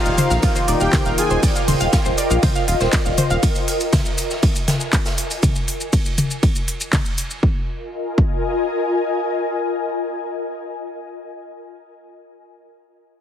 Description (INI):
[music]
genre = melodic techno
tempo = 120 BPM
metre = 4/4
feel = straight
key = F dorian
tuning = A4 = 441 Hz
[part]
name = expressive portamento lead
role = melody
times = 0.0-1.4 s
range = F4 to Ab4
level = -27 LUFS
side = equal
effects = chorus, sidechain pumping, dub echo
[part]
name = soft supersaw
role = second line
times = 0.0-1.4 s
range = F5 to Ab5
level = -29 LUFS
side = right 1 dB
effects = sidechain pumping, tape echo
[part]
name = analog pluck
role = arpeggios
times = 0.0-3.4 s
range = F4 to F6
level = -25 LUFS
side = equal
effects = chorus, sidechain pumping, tape echo
[part]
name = sync-sweep polysynth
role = stabs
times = 0.0-1.4 s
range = Eb3 to Eb4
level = -26 LUFS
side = left 4 dB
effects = chorus, cassette tape, sidechain pumping, tape echo
[part]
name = ethereal airy pad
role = texture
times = 0.1-11.1 s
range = F4 to Ab5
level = -24 LUFS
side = left 1 dB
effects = ensemble chorus, built-in reverb, sidechain pumping
[part]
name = round analog bass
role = bass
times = 0.1-3.4 s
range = Eb1 to Bb1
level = -22 LUFS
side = equal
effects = sidechain pumping
[part]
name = techno drum kit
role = drums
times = 0.1-7.4 s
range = handclaps, hi-hat, ride cymbal, shaker, toms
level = -23 LUFS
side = left 1 dB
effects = none
[part]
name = raw garage drum kit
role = drums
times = 0.2-5.4 s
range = hi-hat, snare drum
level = -30 LUFS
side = right 1 dB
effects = high-pass filter on hats, high-pass filter on snare, high-pass filter on room
[part]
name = electronic kick drum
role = drums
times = 0.4-8.3 s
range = none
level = -19 LUFS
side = equal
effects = none
[sound]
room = light reverb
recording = heavily compressed radio sound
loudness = -17 LUFS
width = side -10 dB against mid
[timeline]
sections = 0.0-7.4 A section; 7.4-11.4 B section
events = drop 0.0-7.4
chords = 0.0 Eb; 3.4 Fm